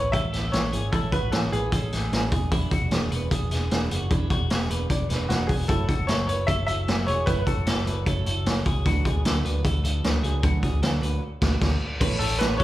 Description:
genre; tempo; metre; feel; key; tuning
jangly indie pop; 152 BPM; 4/4; straight; A major; A4 = 440 Hz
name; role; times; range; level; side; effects
bright upright piano; melody; 0.0-2.3, 5.3-8.6, 12.2-12.6 s; F#4 to E5; -29 LUFS; equal; plate reverb, slapback echo, tape echo
fingerpicked steel-string acoustic guitar; accompaniment; 0.0-12.6 s; A2 to C#5; -32 LUFS; right 5 dB; slapback echo
twelve-string electric guitar; arpeggios; 0.0-12.6 s; A3 to D5; -34 LUFS; left 1 dB; slapback echo, tape echo
vintage muted picked electric bass; bass; 0.0-12.6 s; E1 to A2; -27 LUFS; equal; none
raw garage drum kit; drums; 0.1-12.6 s; crash cymbal, hi-hat, kick drum, snare drum; -25 LUFS; equal; none
rich studio string section; sustained chords; 12.0-12.6 s; A3 to C#4; -41 LUFS; equal; none
tambourine; percussion; 12.0-12.6 s; none; -44 LUFS; left 5 dB; none
room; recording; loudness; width
light reverb; live gig heard through the venue's PA, club reverb; -22 LUFS; side -15 dB against mid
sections
0.0-12.0 A section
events
band accent 11.2-12.0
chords
0.0 Amaj7; 2.3 E7; 5.7 F#m7; 8.9 D6; 12.0 Aadd9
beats
0.14 0.53 | 0.93 1.33 1.73 2.12 | 2.52 2.92 3.31 3.71 | 4.11 4.50 4.90 5.29 | 5.69 6.09 6.48 6.88 | 7.27 7.67 8.06 8.46 | 8.86 9.25 9.64 10.04 | 10.43 10.83 11.22 11.62 | 12.01 12.40

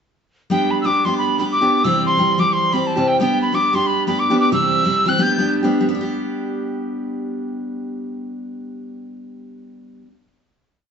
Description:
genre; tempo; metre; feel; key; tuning
celtic folk, Celtic hornpipe; 179 BPM; 4/4; swing 62% on 8ths; G major; A4 = 440 Hz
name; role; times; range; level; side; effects
mellow tin whistle; melody; 0.5-5.5 s; G5 to G6; -18 LUFS; equal; none
picked steel-string acoustic guitar; accompaniment; 0.5-10.1 s; C3 to G4; -20 LUFS; equal; none
room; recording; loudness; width
wet studio reverb, RT60 0.8 s; heard from further back in the room, nothing above 7.8 kHz; -16 LUFS; side -6 dB against mid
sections
0.5-5.9 A section; 5.9-8.5 final chord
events
none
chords
0.5 G; 1.8 C; 3.2 G; 4.5 C; 5.2 G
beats
| 0.51 0.84 1.18 1.51 | 1.85 2.18 2.52 2.85 | 3.19 3.52 3.85 4.19 | 4.53 4.86 5.20 5.53 | 5.87 6.20 6.54 6.87 | 7.21 7.54 7.88 8.21

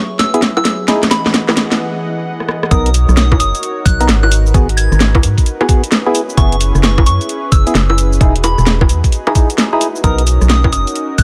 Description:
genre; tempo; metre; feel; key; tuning
UK garage, two-step garage; 131 BPM; 4/4; swing 64% on 16ths; unclear; A4 = 440 Hz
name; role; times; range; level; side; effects
warm analog pad; sustained chords; 0.0-11.2 s; E3 to F#5; -26 LUFS; equal; chorus, sidechain pumping
soft synth bell; melody; 0.2-11.2 s; B5 to G#6; -23 LUFS; equal; chorus, phaser, tape echo
garage drum kit; drums; 0.2-11.2 s; bongos, cabasa, hi-hat, rim click, snare drum; -18 LUFS; equal; none
percussive organ stab; stabs; 0.3-10.2 s; B3 to A#4; -21 LUFS; equal; chorus, tape echo
electronic kick drum; drums; 0.4-11.2 s; none; -14 LUFS; equal; high-pass filter on kick
organ-like FM bass; bass; 2.7-11.2 s; E1 to G#2; -15 LUFS; equal; tube saturation
room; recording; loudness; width
light reverb; none; -13 LUFS; mono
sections
0.0-2.7 A section; 2.7-11.2 B section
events
build-up 0.0-2.7; drum fill 0.0-1.8, 2.4-2.7; filter sweep on analog synth pad 0.0-2.7; break 1.8-2.7; drop 2.7-11.2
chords
0.0 F#9sus4; 0.9 Emaj7; 2.7 Bmaj7; 4.3 G#m7; 6.1 F#9sus4; 8.2 Emaj7; 10.0 Bmaj7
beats
0.42 | 0.88 1.34 1.79 2.25 | 2.71 3.17 3.63 4.08 | 4.54 5.00 5.46 5.92 | 6.38 6.83 7.29 7.75 | 8.21 8.67 9.12 9.58 | 10.04 10.50 10.96

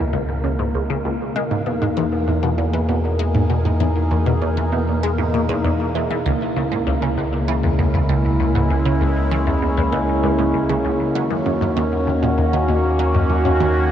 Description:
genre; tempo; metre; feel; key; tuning
ambient, sequencer-driven space music; 98 BPM; 4/4; straight; C# dorian; A4 = 439 Hz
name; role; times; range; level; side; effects
sweeping resonant pad; sustained chords; 0.0-13.9 s; B2 to G#4; -22 LUFS; equal; chorus, phaser
resonant blip pluck; riff; 0.0-13.7 s; C#2 to G#3; -22 LUFS; equal; phaser, wide subtle chorus, tape echo
warm sub bass; bass; 0.0-13.9 s; C#2 to E2; -22 LUFS; equal; none
wind-like tuned noise texture; texture; 0.0-13.9 s; A#3 to A#4; -26 LUFS; equal; built-in reverb
room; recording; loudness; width
moderate huge ambient reverb, RT60 7.2 s; dark, warm production; -17 LUFS; side -10 dB against mid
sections
0.0-13.9 A section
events
fade-in on analog synth pad 0.0-13.9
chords
0.0 C#m7; 1.4 Emaj7; 6.3 C#m7; 11.2 D#m7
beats
0.13 0.74 | 1.36 1.97 2.58 3.19 | 3.81 4.42 5.03 5.64 | 6.25 6.87 7.48 8.09 | 8.70 9.31 9.93 10.54 | 11.15 11.76 12.38 12.99 | 13.60

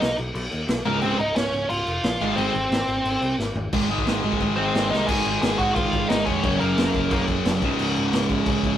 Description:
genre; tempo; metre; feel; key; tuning
punk rock; 178 BPM; 4/4; straight; unclear; A4 = 440 Hz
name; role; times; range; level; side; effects
nasal lead guitar with a parked wah; melody; 0.0-7.2 s; Bb3 to Ab5; -24 LUFS; equal; overdrive
modern bright picked electric bass; bass; 0.0-8.7 s; Db1 to Eb2; -31 LUFS; equal; none
raw garage drum kit; drums; 0.0-8.7 s; crash cymbal, kick drum, snare drum, toms; -26 LUFS; equal; none
overdriven semi-hollow guitar; riff; 0.9-8.8 s; Db2 to Ab3; -25 LUFS; right 4 dB; none
tight distorted guitar; riff; 0.9-8.8 s; Db2 to Ab3; -26 LUFS; left 6 dB; distortion
room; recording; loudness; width
moderate studio reverb, RT60 0.5 s; rough rehearsal-room recording; -20 LUFS; side -10 dB against mid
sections
0.0-3.7 A section; 3.7-5.1 B section; 5.1-8.8 C section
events
drum fill 3.4-3.7, 4.9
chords
0.0 Cb; 0.9 Db; 2.2 Ab; 5.1 Ab5; 6.4 Gb; 7.6 Db5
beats
0.02 0.35 0.69 | 1.03 1.37 1.70 2.04 | 2.38 2.72 3.05 3.39 | 3.73 4.07 4.41 4.74 | 5.08 5.42 5.76 6.10 | 6.43 6.77 7.11 7.45 | 7.79 8.12 8.46

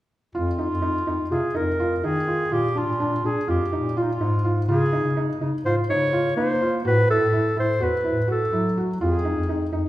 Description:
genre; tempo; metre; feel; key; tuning
contemporary instrumental, contemporary; 250 BPM (eighths); 9/8; straight; F minor; A4 = 440 Hz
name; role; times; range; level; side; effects
felt-muted upright piano; arpeggios; 0.3-9.9 s; D4 to Gb4; -26 LUFS; right 1 dB; none
mellow bass clarinet; bass; 0.3-9.8 s; E2 to Bb3; -25 LUFS; equal; none
mellow clarinet; melody; 0.4-9.7 s; Eb4 to Db5; -24 LUFS; equal; none
room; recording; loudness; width
wet recital hall reverb, RT60 1.5 s; recorded in a church or concert hall; -20 LUFS; side -15 dB against mid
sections
0.4-9.9 A section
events
none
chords
0.4 Fm; 2.5 Bb; 4.7 Db; 6.8 A5; 9.0 Fm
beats
| 0.35 0.59 0.83 1.08 1.32 1.56 1.80 2.04 2.28 | 2.52 2.76 3.00 3.24 3.48 3.72 3.96 4.20 4.44 | 4.68 4.92 5.17 5.41 5.65 5.89 6.13 6.37 6.61 | 6.85 7.09 7.33 7.57 7.81 8.05 8.29 8.53 8.77 | 9.01 9.25 9.49 9.73

